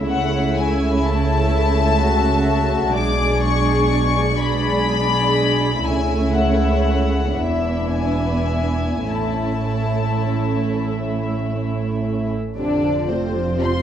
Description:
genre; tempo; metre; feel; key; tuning
classical, slow romantic movement for string orchestra; 32-42 BPM (dotted quarters); 6/8; rubato; A major; A4 = 441 Hz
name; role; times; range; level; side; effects
dark symphonic violin section; second line; 0.0-13.8 s; C4 to E5; -24 LUFS; left 2 dB; none
dark symphonic viola section; accompaniment; 0.0-13.8 s; C3 to F4; -23 LUFS; right 3 dB; none
warm studio cello section; bass; 0.0-13.8 s; E2 to C4; -25 LUFS; right 3 dB; none
warm studio double bass section; bass; 0.0-13.8 s; E1 to C#2; -23 LUFS; right 2 dB; none
warm studio violin section; melody; 0.1-13.8 s; C5 to D6; -24 LUFS; left 6 dB; none
room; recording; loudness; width
moderate concert hall reverb, RT60 2.4 s; dark, warm production; -17 LUFS; side -9 dB against mid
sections
0.0-12.6 A section; 12.6-13.8 B section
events
none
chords
0.1 A/C#; 3.0 G#dim/B; 5.8 A/C#; 7.4 E7; 9.1 A; 12.6 F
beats
| 0.08 1.54 | 2.96 4.41 | 5.84 7.37 | 9.10 10.89 | 12.58

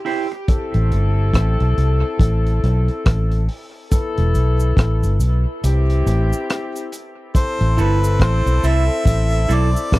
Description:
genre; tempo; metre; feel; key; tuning
dub reggae; 70 BPM; 4/4; swing 60% on 16ths; A minor; A4 = 440 Hz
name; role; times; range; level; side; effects
clean electric guitar; accompaniment; 0.0-0.4, 7.8-9.7 s; E4 to C5; -26 LUFS; right 7 dB; dub echo
crunchy breakbeat drum kit; drums; 0.1-10.0 s; hi-hat, kick drum, rim click; -17 LUFS; equal; none
clear horn section; second line; 0.5-10.0 s; B3 to A4; -25 LUFS; left 3 dB; dub echo
vintage muted fingered electric bass; bass; 0.7-10.0 s; E1 to C2; -16 LUFS; equal; none
cabasa; percussion; 3.9-9.9 s; none; -36 LUFS; right 3 dB; none
clear harmonica; melody; 7.4-10.0 s; B4 to E5; -25 LUFS; equal; dub echo
room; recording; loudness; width
little or no reverb; dry, close 1970s-style studio recording; -15 LUFS; side -18 dB against mid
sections
0.0-10.0 A section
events
break 0.0-3.9, 5.6-7.3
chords
0.5 Am; 3.9 E5; 5.6 C; 7.3 Am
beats
| 0.48 1.34 2.20 3.06 | 3.91 4.77 5.63 6.49 | 7.34 8.20 9.06 9.92

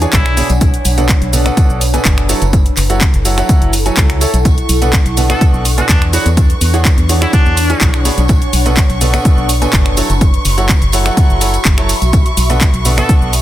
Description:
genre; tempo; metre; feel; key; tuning
piano house; 125 BPM; 4/4; straight; B dorian; A4 = 440 Hz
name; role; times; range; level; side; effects
clear grand piano; riff; 0.0-13.3 s; B2 to B5; -19 LUFS; right 2 dB; sidechain pumping, dub echo
organ-like FM bass; bass; 0.0-13.4 s; F#1 to E2; -14 LUFS; equal; sidechain pumping
house drum kit; drums; 0.0-13.4 s; finger snaps, handclaps, hi-hat, shaker; -18 LUFS; equal; none
tambourine; percussion; 0.0-13.4 s; none; -28 LUFS; right 7 dB; none
ethereal airy pad; texture; 0.0-13.4 s; D4 to B5; -22 LUFS; left 1 dB; ensemble chorus, built-in reverb, sidechain pumping
trumpet with straight mute; melody; 0.1-0.5, 5.3-8.0, 13.0-13.1 s; D4 to A4; -22 LUFS; equal; dub echo
electronic kick drum; drums; 0.1-13.2 s; none; -11 LUFS; equal; none
clear chamber violin section; sustained chords; 4.5-13.4 s; C#6; -24 LUFS; right 2 dB; sidechain pumping
room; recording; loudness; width
studio reverb; dense, heavily limited modern master; -9 LUFS; side -13 dB against mid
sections
0.0-13.4 A section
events
none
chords
0.0 E13; 0.6 Bm7; 2.3 F#m7; 4.5 Bm7; 6.1 E13; 8.3 Bm7; 10.0 F#m7; 12.1 Bm7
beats
0.13 | 0.61 1.09 1.57 2.05 | 2.53 3.01 3.49 3.97 | 4.45 4.93 5.41 5.89 | 6.37 6.85 7.33 7.81 | 8.29 8.77 9.25 9.73 | 10.21 10.69 11.17 11.65 | 12.13 12.61 13.09

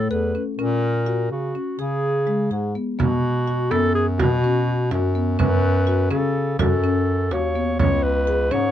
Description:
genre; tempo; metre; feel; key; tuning
contemporary instrumental, chamber music in an uneven meter; 250 BPM (eighths); 5/8; straight; unclear; A4 = 440 Hz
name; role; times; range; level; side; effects
mellow clarinet; melody; 0.0-8.7 s; F#4 to C#5; -24 LUFS; right 1 dB; none
clear bass clarinet; bass; 0.0-8.7 s; C#2 to C#3; -22 LUFS; equal; none
marimba with soft mallets; arpeggios; 0.1-8.7 s; G#3 to A4; -25 LUFS; left 6 dB; none
frame drum; percussion; 3.0-8.7 s; none; -24 LUFS; right 4 dB; none
room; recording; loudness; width
light reverb; dark, warm production; -19 LUFS; side -11 dB against mid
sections
0.0-3.0 A section; 3.0-8.7 B section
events
none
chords
0.0 A; 0.6 F#/A#; 1.8 C#5; 3.0 B5; 5.4 F#m; 7.8 C#5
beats
0.10 0.35 | 0.59 0.83 1.07 1.31 1.55 | 1.79 2.03 2.27 2.51 2.75 | 2.99 3.23 3.47 3.71 3.95 | 4.19 4.43 4.67 4.91 5.15 | 5.39 5.63 5.87 6.11 6.35 | 6.59 6.83 7.07 7.31 7.55 | 7.79 8.03 8.27 8.52

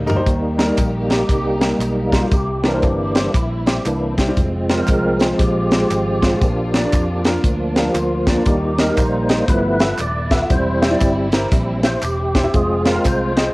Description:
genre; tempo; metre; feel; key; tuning
uptempo gospel; 117 BPM; 4/4; swing 62% on 8ths; Eb major; A4 = 441 Hz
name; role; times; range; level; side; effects
tonewheel organ; sustained chords; 0.0-13.5 s; E3 to D5; -20 LUFS; equal; slow rotary speaker, overdrive, chorus vibrato, cassette tape
fingered electric bass; bass; 0.0-13.5 s; Eb1 to F2; -23 LUFS; equal; none
warm upright piano; accompaniment; 0.1-13.5 s; G2 to F5; -23 LUFS; left 1 dB; cassette tape
tight funk drum kit; drums; 0.1-13.5 s; hi-hat, kick drum, snare drum, toms; -18 LUFS; equal; cassette tape
tambourine and handclaps; percussion; 0.1-13.5 s; none; -34 LUFS; right 1 dB; none
warm studio string section; sustained chords; 0.3-13.5 s; Eb3 to G4; -32 LUFS; equal; cassette tape
room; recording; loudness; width
moderate spring reverb, RT60 1.4 s, small room ambience; home recording on cassette; -15 LUFS; side -22 dB against mid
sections
0.3-13.5 A section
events
drum fill 0.0; tonewheel organ solo 0.3-13.5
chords
0.3 Eb; 2.3 C7; 4.4 Fm; 6.4 Bb; 8.5 Eb; 9.5 G13; 10.5 C/E; 12.5 Fm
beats
| 0.27 0.78 1.29 1.81 | 2.32 2.83 3.35 3.86 | 4.37 4.89 5.40 5.91 | 6.42 6.93 7.45 7.96 | 8.47 8.98 9.49 10.00 | 10.51 11.02 11.52 12.03 | 12.54 13.05

